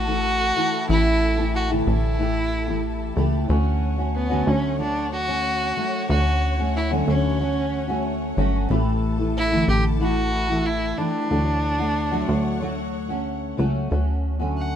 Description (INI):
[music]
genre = acoustic pop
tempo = 92 BPM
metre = 4/4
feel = straight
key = D major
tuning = A4 = 441 Hz
[part]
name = warm violin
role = melody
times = 0.0-14.8 s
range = B3 to F#5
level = -25 LUFS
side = right 1 dB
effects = none
[part]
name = fingerpicked steel-string acoustic guitar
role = accompaniment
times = 0.0-14.8 s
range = A2 to G4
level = -25 LUFS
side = left 1 dB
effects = double-tracked left and right
[part]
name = clear studio string section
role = sustained chords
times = 0.0-13.9 s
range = A4 to A5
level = -37 LUFS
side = left 5 dB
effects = none
[part]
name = plucky analog bass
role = bass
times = 0.0-14.8 s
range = G1 to D2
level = -24 LUFS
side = equal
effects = none
[sound]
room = light reverb, small room ambience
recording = rough home demo mix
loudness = -20 LUFS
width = side -9 dB against mid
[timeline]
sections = 0.0-13.9 A section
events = none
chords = 0.0 A7sus4; 3.5 Dmaj7; 8.7 A7sus4; 11.3 Dmaj7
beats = 0.24 | 0.89 1.54 2.19 2.84 | 3.49 4.14 4.79 5.45 | 6.10 6.75 7.40 8.05 | 8.70 9.35 10.00 10.65 | 11.30 11.96 12.61 13.26 | 13.91 14.56